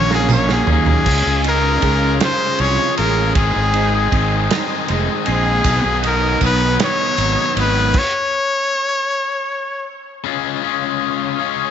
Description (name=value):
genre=indie rock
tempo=52 BPM (dotted quarters)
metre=6/8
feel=straight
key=Db major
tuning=A4 = 439 Hz
part: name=brilliant trumpet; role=melody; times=0.0-9.9 s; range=Ab4 to Db5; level=-19 LUFS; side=left 2 dB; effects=tape echo
part: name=analog string pad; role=sustained chords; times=0.0-11.7 s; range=Cb4 to Eb6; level=-30 LUFS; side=right 1 dB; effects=none
part: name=cranked stack guitar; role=riff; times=0.0-11.7 s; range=Ab2 to F4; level=-21 LUFS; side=left 15 dB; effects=overdrive
part: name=electric guitar through a small old amp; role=riff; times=0.0-7.9 s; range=Ab2 to Eb4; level=-24 LUFS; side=right 13 dB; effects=ensemble chorus, tape echo
part: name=fuzz fingered electric bass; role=bass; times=0.0-7.9 s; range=F1 to Eb2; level=-19 LUFS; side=equal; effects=overdrive
part: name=loose indie drum kit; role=drums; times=0.1-8.1 s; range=crash cymbal, kick drum, ride cymbal, snare drum, toms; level=-21 LUFS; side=right 3 dB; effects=none
part: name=tambourine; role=percussion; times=0.3-0.8, 5.6-7.4 s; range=none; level=-32 LUFS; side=right 16 dB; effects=none
room=light reverb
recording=1960s-style stereo with parts hard left and right, nothing above 7.8 kHz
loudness=-14 LUFS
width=side -8 dB against mid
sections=0.0-1.1 A section; 1.1-10.2 B section; 10.2-11.7 C section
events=drum fill 0.0-1.1; trumpet solo 0.0-1.1; stop 7.9-10.2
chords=0.0 Gb/Bb; 1.1 Dbadd9; 3.4 Ab; 5.7 Cb; 7.9 N.C.; 10.2 Dbadd9